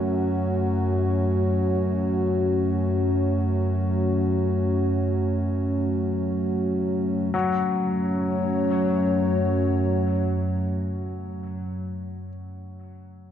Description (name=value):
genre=dark ambient drone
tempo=free time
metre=none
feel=none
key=F# minor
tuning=A4 = 441 Hz
part: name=dark analog pad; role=sustained chords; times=0.0-11.8 s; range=A3 to C#5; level=-26 LUFS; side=equal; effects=chorus
part: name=clear concert grand piano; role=arpeggios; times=0.0-13.3 s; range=A2 to F#3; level=-30 LUFS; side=left 4 dB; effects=tape echo
part: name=analog drone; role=drone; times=0.0-11.8 s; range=F#2 to F#3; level=-24 LUFS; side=equal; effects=chorus
room=wet cathedral reverb, RT60 5.5 s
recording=in a vast, echoing space, nothing above 7.5 kHz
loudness=-22 LUFS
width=side -9 dB against mid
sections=0.0-7.3 A section; 7.3-11.0 B section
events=none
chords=0.0 F#m